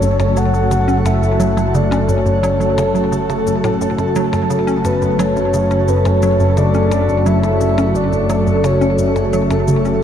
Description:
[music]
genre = ambient, sequencer-driven space music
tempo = 87 BPM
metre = 4/4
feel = straight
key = F# minor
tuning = A4 = 440 Hz
[part]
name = soft octave-layered synth lead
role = melody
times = 0.0-9.2 s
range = B4 to F#5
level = -20 LUFS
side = left 1 dB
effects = chorus, shimmer reverb, analog delay
[part]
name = sweeping resonant pad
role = sustained chords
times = 0.0-10.0 s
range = C#3 to A4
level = -17 LUFS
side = equal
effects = chorus, shimmer reverb
[part]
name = hollow square pluck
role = riff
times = 0.0-10.0 s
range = F#2 to C#4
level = -20 LUFS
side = right 1 dB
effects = chorus, shimmer reverb, analog delay
[part]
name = analog drone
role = bass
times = 0.0-10.0 s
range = F#1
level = -19 LUFS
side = equal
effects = chorus
[part]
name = cabasa and percussion blips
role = percussion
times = 0.0-10.0 s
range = none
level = -32 LUFS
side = left 5 dB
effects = analog delay
[sound]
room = wet plate reverb, RT60 3.6 s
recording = dreamy mix soaked in reverb, cassette tape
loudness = -13 LUFS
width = side -9 dB against mid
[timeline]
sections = 0.0-10.0 A section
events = none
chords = 0.0 F#m

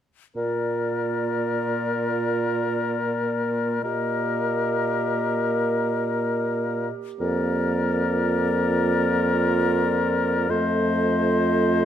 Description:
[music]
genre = classical, slow romantic movement for wind quintet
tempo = 72 BPM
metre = 4/4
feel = rubato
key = Bb major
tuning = A4 = 442 Hz
[part]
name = concert flute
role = melody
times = 0.4-11.8 s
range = D5 to Eb5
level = -30 LUFS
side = left 11 dB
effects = none
[part]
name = warm oboe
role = second line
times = 0.4-11.8 s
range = Bb4 to C5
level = -27 LUFS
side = left 5 dB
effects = none
[part]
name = mellow French horn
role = accompaniment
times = 0.4-11.8 s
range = A3 to Bb3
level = -28 LUFS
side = left 1 dB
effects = none
[part]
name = mellow clarinet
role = accompaniment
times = 0.4-11.8 s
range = F4 to G4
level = -31 LUFS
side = right 12 dB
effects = none
[part]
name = mellow bassoon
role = bass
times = 0.4-11.8 s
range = F2 to Bb2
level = -25 LUFS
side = right 3 dB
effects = none
[sound]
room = moderate recital hall reverb, RT60 1.7 s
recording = close, detailed microphones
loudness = -21 LUFS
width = side -10 dB against mid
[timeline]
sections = 0.4-11.8 A section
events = none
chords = 0.4 Bb; 3.8 Eb/Bb; 7.2 Bb/F; 10.5 F7

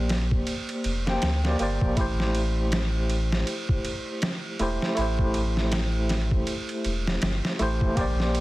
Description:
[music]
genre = trip hop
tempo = 80 BPM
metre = 4/4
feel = swing 58% on 16ths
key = A phrygian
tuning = A4 = 441 Hz
[part]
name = overdriven tine electric piano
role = accompaniment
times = 0.0-8.4 s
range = A3 to G5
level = -28 LUFS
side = equal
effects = tremolo, tape echo
[part]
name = soft dub sub bass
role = bass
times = 0.0-8.4 s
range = E1 to D2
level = -26 LUFS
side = equal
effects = none
[part]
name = trip hop sampler-style drum kit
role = drums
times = 0.1-8.4 s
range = kick drum, ride cymbal, snare drum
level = -28 LUFS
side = equal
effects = studio reverb
[sound]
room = little or no reverb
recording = dense, heavily limited modern master, vinyl crackle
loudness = -23 LUFS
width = side -18 dB against mid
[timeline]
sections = 0.0-8.4 A section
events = none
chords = 0.0 Bb69; 2.0 Am7

